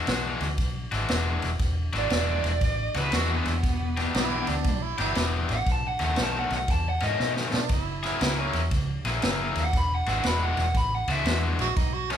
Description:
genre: electric blues shuffle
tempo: 118 BPM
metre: 4/4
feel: swing 65% on 8ths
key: unclear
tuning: A4 = 441 Hz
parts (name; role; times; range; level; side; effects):
- cranked stack guitar; riff; 0.0-12.2 s; B2 to G#4; -30 LUFS; left 4 dB; overdrive
- vintage muted fingered electric bass; bass; 0.1-12.2 s; E1 to B2; -29 LUFS; equal; none
- vintage drum kit; drums; 0.1-12.2 s; kick drum, ride cymbal, snare drum; -29 LUFS; equal; none
- dark smooth lead guitar; melody; 2.0-11.4 s; B3 to B5; -29 LUFS; right 1 dB; overdrive
- growling tenor saxophone; second line; 4.2-12.2 s; C#4 to F#4; -31 LUFS; right 6 dB; none
room: light reverb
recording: band playing live in one room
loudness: -23 LUFS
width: side -9 dB against mid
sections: 0.0-12.2 A section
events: drum fill 7.2-7.7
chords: 0.0 E9; 3.6 Em7; 5.7 B9; 7.7 F#9; 9.7 E9

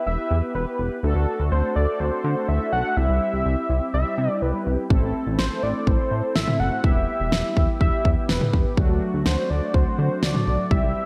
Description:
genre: synth-pop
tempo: 124 BPM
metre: 4/4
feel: straight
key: D mixolydian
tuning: A4 = 440 Hz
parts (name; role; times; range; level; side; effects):
- unison lead; melody; 0.0-11.1 s; B4 to F#5; -28 LUFS; equal; none
- mellow synth brass; accompaniment; 0.0-11.1 s; F#3 to B4; -30 LUFS; equal; chorus
- chorused synth bass; bass; 0.1-10.9 s; E1 to D3; -26 LUFS; equal; none
- pop drum kit; drums; 4.9-10.8 s; kick drum, snare drum, toms; -24 LUFS; equal; overdrive, gated reverb
room: moderate lush hall reverb, RT60 2.0 s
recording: bright 1980s-style digital production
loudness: -22 LUFS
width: mono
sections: 0.0-11.1 A section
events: none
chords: 0.0 Em; 1.0 D; 3.0 C; 4.9 Am; 6.8 Em; 8.8 D

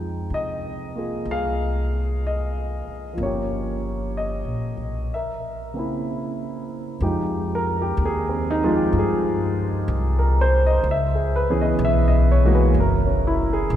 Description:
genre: jazz ballad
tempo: 63 BPM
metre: 4/4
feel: swing 68% on 8ths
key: F minor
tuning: A4 = 439 Hz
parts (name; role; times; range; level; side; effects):
- warm baby grand piano; accompaniment; 0.0-13.8 s; Db3 to G5; -23 LUFS; right 1 dB; none
- upright bass; bass; 0.0-13.8 s; Gb1 to C3; -23 LUFS; equal; none
room: wet cathedral reverb, RT60 4.2 s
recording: recorded in a church or concert hall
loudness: -20 LUFS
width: side -11 dB against mid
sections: 0.0-7.0 A section; 7.0-13.8 B section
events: break 5.1-7.0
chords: 0.0 Fm9; 3.2 Gm7b5; 5.1 C7b9; 7.0 Fm9; 10.8 Dbm7; 12.7 Gb

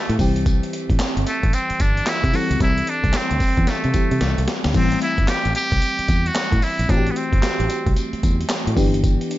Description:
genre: R&B, new jack swing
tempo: 112 BPM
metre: 4/4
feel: swing 63% on 16ths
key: A dorian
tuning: A4 = 440 Hz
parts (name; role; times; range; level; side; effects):
- trumpet with metal mute; melody; 0.0-8.0 s; A3 to G4; -24 LUFS; equal; digital delay
- FM electric piano with soft pad layer; accompaniment; 0.0-9.4 s; E3 to A4; -25 LUFS; left 1 dB; chorus, phaser
- fingered electric bass; bass; 0.1-9.2 s; G1 to C3; -22 LUFS; equal; none
- boom bap sampler-style drum kit; drums; 0.1-9.4 s; crash cymbal, handclaps, hi-hat, kick drum, snare drum, tambourine; -21 LUFS; equal; gated reverb
room: digital ambience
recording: nothing above 7.6 kHz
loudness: -17 LUFS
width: side -15 dB against mid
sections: 0.0-9.4 A section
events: drum fill 4.2-4.7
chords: 0.2 C; 4.7 Am7; 8.8 G6

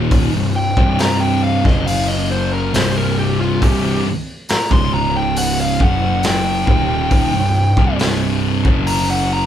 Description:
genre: stoner and doom metal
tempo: 68 BPM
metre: 4/4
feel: straight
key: unclear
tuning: A4 = 440 Hz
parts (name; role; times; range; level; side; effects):
- thick fuzz guitar; riff; 0.0-9.5 s; C2 to F#3; -21 LUFS; left 7 dB; distortion
- thick fuzz guitar; riff; 0.0-9.5 s; C2 to F#3; -21 LUFS; right 6 dB; distortion
- fuzz picked electric bass; bass; 0.0-9.5 s; C1 to F#1; -22 LUFS; equal; overdrive
- raw garage drum kit; drums; 0.1-9.1 s; hi-hat, kick drum, snare drum; -19 LUFS; equal; none
- fuzz lead guitar; melody; 0.6-9.5 s; F4 to C6; -21 LUFS; equal; distortion
room: light reverb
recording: band playing live in one room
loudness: -14 LUFS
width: side -10 dB against mid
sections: 0.0-9.5 A section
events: lead electric guitar solo 0.0-9.5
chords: 0.0 Cm; 1.6 F#5; 2.7 C5; 4.7 Db5; 5.8 F#5; 6.7 Cm; 8.6 F#5

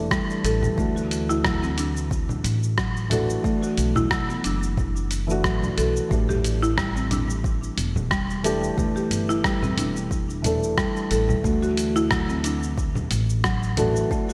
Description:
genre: organic downtempo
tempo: 90 BPM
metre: 4/4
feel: swing 54% on 16ths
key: unclear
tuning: A4 = 440 Hz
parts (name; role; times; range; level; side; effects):
- felt-muted upright piano; accompaniment; 0.0-14.3 s; E3 to A4; -31 LUFS; equal; sidechain pumping, digital delay
- upright bass; bass; 0.0-14.0 s; E1 to D2; -29 LUFS; equal; sidechain pumping
- buzzing marimba with hard mallets; arpeggios; 0.1-14.3 s; F#3 to A4; -28 LUFS; equal; digital delay
- dusty soul sampler-style drum kit; drums; 0.1-14.3 s; congas, hi-hat, rim click, shaker; -31 LUFS; equal; none
- electronic kick drum; drums; 0.1-14.3 s; none; -30 LUFS; equal; overdrive
room: moderate lush hall reverb, RT60 2.4 s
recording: bright 1980s-style digital production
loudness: -23 LUFS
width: mono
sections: 0.0-14.3 A section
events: none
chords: 0.0 A7(no3); 0.8 D; 3.4 Bm7; 6.1 A7(no3); 11.4 D

